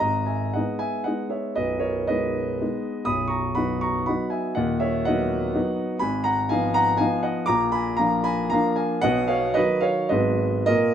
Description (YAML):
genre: classical, romantic triple-time dance for piano with dotted rhythms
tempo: 99-133 BPM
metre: 3/4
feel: rubato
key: G# minor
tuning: A4 = 440 Hz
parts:
  - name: warm concert grand piano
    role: solo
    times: 0.0-10.9 s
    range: B0 to D#6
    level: -21 LUFS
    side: equal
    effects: none
room: moderate large studio reverb, RT60 0.9 s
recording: none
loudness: -21 LUFS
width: side -9 dB against mid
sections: 0.0-10.9 A section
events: none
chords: 0.0 G#m; 1.6 G#m/B; 3.1 B; 4.6 B/D#; 6.0 Fm7b5/Ab; 7.5 Bb; 9.0 B; 10.1 Abm7